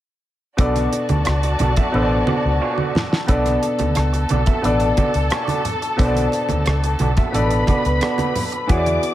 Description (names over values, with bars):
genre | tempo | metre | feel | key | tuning
lush 1970s-style soul | 89 BPM | 4/4 | straight | B minor | A4 = 440 Hz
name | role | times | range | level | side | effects
muted symphonic string section | second line | 0.6-9.1 s | F#4 to D6 | -25 LUFS | left 2 dB | none
clear baby grand piano | accompaniment | 0.6-9.1 s | B2 to D5 | -22 LUFS | left 1 dB | none
electric guitar through a small old amp | riff | 0.6-9.0 s | B3 to E5 | -27 LUFS | right 6 dB | warbly pitch drift
vintage muted fingered electric bass | bass | 0.6-9.0 s | A1 to E2 | -20 LUFS | equal | none
damped 70s drum kit | drums | 0.6-9.1 s | hi-hat, kick drum, rim click, snare drum | -21 LUFS | equal | none
congas | percussion | 0.6-9.1 s | none | -26 LUFS | right 3 dB | none
room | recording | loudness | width
light reverb | none | -16 LUFS | side -13 dB against mid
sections
0.6-3.3 A section; 3.3-9.1 B section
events
drum fill 1.9-3.3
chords
0.6 Bm7